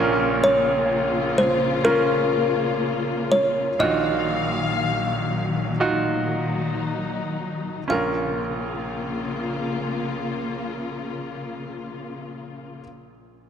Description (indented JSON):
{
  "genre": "pop ballad",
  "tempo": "56-63 BPM",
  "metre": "4/4",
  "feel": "straight",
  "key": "Bb minor",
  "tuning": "A4 = 440 Hz",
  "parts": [
    { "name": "bright baby grand piano", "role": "accompaniment", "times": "0.0-13.5 s", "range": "Bb1 to Bb4", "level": "-25 LUFS", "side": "right 2 dB", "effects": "none" },
    { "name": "warm studio string section", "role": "sustained chords", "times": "0.0-12.8 s", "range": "Bb2 to F5", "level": "-26 LUFS", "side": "left 3 dB", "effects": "none" },
    { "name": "kalimba", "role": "melody", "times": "0.4-12.8 s", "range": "Bb4 to F5", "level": "-22 LUFS", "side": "left 1 dB", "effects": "none" }
  ],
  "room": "wet lush hall reverb, RT60 2.2 s",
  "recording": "dark, warm production",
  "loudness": "-21 LUFS",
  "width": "side -8 dB against mid",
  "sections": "0.0-7.9 A section; 7.9-12.2 B section",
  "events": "slowing down 0.0-7.9",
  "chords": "0.0 Bbm; 3.8 Ebmadd9/Bb; 7.9 Bbm"
}